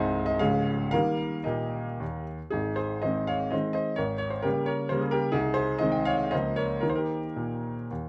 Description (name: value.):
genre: classical, romantic triple-time dance for piano with dotted rhythms.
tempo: 106-141 BPM.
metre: 3/4.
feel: rubato.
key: Ab major.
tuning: A4 = 445 Hz.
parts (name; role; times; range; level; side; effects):
clear baby grand piano; solo; 0.0-8.1 s; C1 to C6; -28 LUFS; equal; none.
room: light reverb.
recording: none.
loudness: -28 LUFS.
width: mono.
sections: 0.0-2.5 A section; 2.5-8.1 B section.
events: none.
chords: 0.4 Db; 0.9 Eb; 2.5 Ab; 4.0 Gdim/Ab; 5.4 Ab/C; 6.3 Bbm/Db; 6.8 Eb.